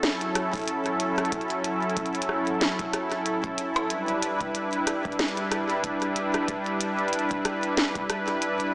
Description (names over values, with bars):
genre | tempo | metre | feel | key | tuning
IDM | 93 BPM | 4/4 | swing 56% on 16ths | E dorian | A4 = 437 Hz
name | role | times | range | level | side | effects
warm analog pad | sustained chords | 0.0-8.7 s | F#3 to B4 | -26 LUFS | equal | chorus, sidechain pumping
glitchy drum kit | drums | 0.0-8.7 s | hi-hat, rim click, snare drum | -28 LUFS | equal | digital delay
electronic kick drum | drums | 0.5-8.1 s | none | -40 LUFS | equal | overdrive
room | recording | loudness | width
moderate plate reverb, RT60 2.2 s | small speaker sound | -24 LUFS | side -24 dB against mid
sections
0.0-8.7 A section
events
none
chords
0.0 F#m7; 3.9 Em7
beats
0.03 0.68 | 1.32 1.97 2.61 3.26 | 3.90 4.55 5.19 5.84 | 6.48 7.13 7.77 8.42